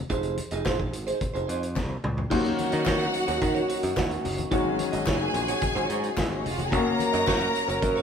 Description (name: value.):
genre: disco.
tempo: 109 BPM.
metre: 4/4.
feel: straight.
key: Eb dorian.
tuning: A4 = 440 Hz.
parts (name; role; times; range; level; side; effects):
clean electric guitar; accompaniment; 0.1-8.0 s; Eb4 to Eb5; -32 LUFS; right 5 dB; phaser.
modern bright picked electric bass; bass; 0.1-8.0 s; F1 to Eb3; -31 LUFS; equal; none.
vintage drum kit; drums; 0.1-8.0 s; crash cymbal, hi-hat, kick drum, snare drum, toms; -31 LUFS; equal; none.
congas; percussion; 0.1-8.0 s; none; -38 LUFS; left 6 dB; none.
group handclap; percussion; 0.7-7.4 s; none; -42 LUFS; left 4 dB; none.
clear studio string section; second line; 2.3-8.0 s; C4 to Bb5; -29 LUFS; equal; none.
warm baby grand piano; accompaniment; 2.3-8.0 s; Eb3 to Gb4; -30 LUFS; left 5 dB; none.
warm French horn section; sustained chords; 2.3-8.0 s; Eb3 to Bb4; -31 LUFS; right 2 dB; none.
room: moderate stone room reverb, RT60 1.4 s.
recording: band playing live in one room.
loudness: -24 LUFS.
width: side -7 dB against mid.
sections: 0.0-2.3 A section; 2.3-8.0 B section.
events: drum fill 1.8-2.3.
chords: 0.0 Fm7; 2.3 Ebm7; 4.5 Ab7sus4; 6.7 Gb.